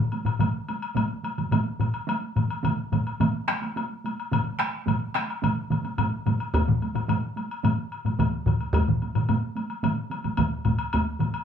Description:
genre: japanese traditional, taiko drum ensemble.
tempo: 108 BPM.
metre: 4/4.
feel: straight.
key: none.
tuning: none.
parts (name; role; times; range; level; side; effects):
taiko ensemble; percussion; 0.1-11.4 s; none; -30 LUFS; right 2 dB; none.
woodblock; percussion; 0.1-11.4 s; none; -33 LUFS; left 5 dB; none.
taiko ensemble; percussion; 0.2-11.3 s; none; -30 LUFS; right 3 dB; none.
taiko ensemble; percussion; 0.3-11.3 s; none; -27 LUFS; left 2 dB; none.
solo taiko drums; percussion; 6.5-11.1 s; none; -27 LUFS; equal; none.
room: wet studio ambience, RT60 0.5 s.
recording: band playing live in one room.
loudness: -24 LUFS.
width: side -8 dB against mid.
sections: 0.0-11.4 A section.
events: speeding up 0.0-11.4.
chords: none.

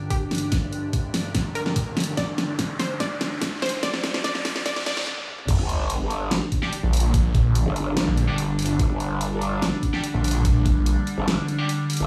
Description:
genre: heavy wobble dubstep.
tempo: 145 BPM.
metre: 4/4.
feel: half-time.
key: G minor.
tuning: A4 = 440 Hz.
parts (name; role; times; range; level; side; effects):
unison pluck; melody; 0.0-5.1 s; G4 to D5; -33 LUFS; equal; tape echo.
evolving wavetable pad; sustained chords; 0.0-12.1 s; G2 to G4; -31 LUFS; equal; chorus, built-in reverb, phaser, sidechain pumping.
riser and sub drop; sound effects; 1.2-7.1 s; none; -35 LUFS; equal; none.
dubstep drum kit; drums; 0.1-12.1 s; crash cymbal, hi-hat, snare drum, toms; -30 LUFS; equal; studio ambience.
electronic kick drum; drums; 0.1-10.7 s; none; -26 LUFS; equal; studio ambience.
growl bass; bass; 5.5-12.1 s; G1; -28 LUFS; equal; chorus, overdrive.
tight distorted guitar; stabs; 6.6-11.6 s; G3 to G4; -34 LUFS; equal; distortion, tape echo.
snarling distorted saw bass; bass; 6.8-11.0 s; G1 to Bb1; -23 LUFS; equal; distortion, overdrive.
room: light reverb, digital ambience.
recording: high-pass filter, studio reverb.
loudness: -24 LUFS.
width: mono.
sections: 0.0-5.5 A section; 5.5-12.1 B section.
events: build-up 0.0-5.5; drum fill 0.0-5.1, 5.1-5.5; filter sweep on synth pluck 0.0-5.5; filter sweep 0.0-5.5; riser 1.2-5.1; stop 5.1-5.5; drop 5.5-12.1; impact 5.5-7.1.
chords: 0.0 G5.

